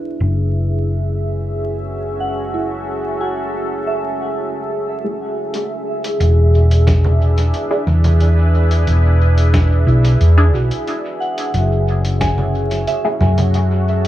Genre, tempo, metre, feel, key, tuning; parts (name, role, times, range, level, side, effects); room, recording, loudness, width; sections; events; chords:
ambient dub; 90 BPM; 4/4; straight; A4 = 440 Hz
deep dark ambient pad; sustained chords; 0.0-14.1 s; C#4 to E5; -22 LUFS; equal; chorus, built-in reverb
soft synth bell; arpeggios; 0.0-5.6, 9.9-14.1 s; E4 to G#5; -25 LUFS; right 4 dB; chorus, dub echo
filtered dub chord stab; stabs; 0.0-13.2 s; A3 to G#4; -24 LUFS; equal; phaser, dub echo
hollow-body short-scale fingered electric bass; bass; 0.0-14.1 s; E1 to F#2; -13 LUFS; equal
lo-fi sampler-style drum kit; drums; 5.5-14.1 s; congas, hi-hat, snare drum; -25 LUFS; right 1 dB; studio reverb, dub echo
electronic kick drum; drums; 6.9-12.3 s; -19 LUFS; equal; studio reverb
light reverb, digital ambience; echo-heavy mix, vinyl crackle, small room ambience; -14 LUFS; side -14 dB against mid
0.0-5.5 A section; 5.5-14.1 B section
0.2 F#m9; 5.5 E7; 10.9 F#m9